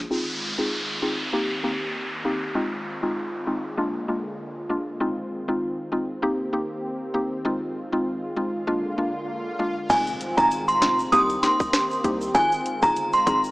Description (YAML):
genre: dancehall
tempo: 98 BPM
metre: 4/4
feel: swing 56% on 16ths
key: F dorian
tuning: A4 = 440 Hz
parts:
  - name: warm analog pad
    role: sustained chords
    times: 0.0-13.5 s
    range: D3 to G4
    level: -32 LUFS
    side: equal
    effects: chorus, sidechain pumping, low-pass filter
  - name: hard-hitting 808-style bass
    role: bass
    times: 0.0-0.1, 9.9-13.5 s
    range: F1 to C2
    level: -33 LUFS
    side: equal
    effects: none
  - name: mallet-like synth pluck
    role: accompaniment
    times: 0.1-13.5 s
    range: Ab3 to Ab4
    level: -27 LUFS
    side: left 1 dB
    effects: chorus, low-pass filter
  - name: downlifter, swell and impact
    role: sound effects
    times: 0.1-12.3 s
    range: none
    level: -32 LUFS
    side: equal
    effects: none
  - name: synth chime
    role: melody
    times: 9.9-13.4 s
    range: Ab5 to Eb6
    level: -20 LUFS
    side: equal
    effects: ensemble chorus, tremolo, digital delay
  - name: island pop drum kit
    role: drums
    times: 9.9-13.4 s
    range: crash cymbal, hi-hat, kick drum, rim click, snare drum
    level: -27 LUFS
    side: equal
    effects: none
  - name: egg shaker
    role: percussion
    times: 9.9-13.5 s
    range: none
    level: -45 LUFS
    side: right 1 dB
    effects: none
room: light reverb, digital ambience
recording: small speaker sound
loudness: -22 LUFS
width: side -21 dB against mid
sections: 0.1-9.9 A section; 9.9-13.5 B section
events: filter sweep 0.1-9.9; swell 8.2-9.9; impact 9.9-12.3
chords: 0.1 Fm7; 1.3 Cm7; 2.6 Ab6; 3.8 Bb7; 5.0 Fm7; 6.2 Cm7; 7.5 Ab6; 8.7 Bb7; 9.9 Fm7; 11.1 Cm7; 12.3 Ab6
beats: | 0.10 0.72 1.33 1.94 | 2.55 3.17 3.78 4.39 | 5.00 5.61 6.23 6.84 | 7.45 8.06 8.68 9.29 | 9.90 10.51 11.12 11.74 | 12.35 12.96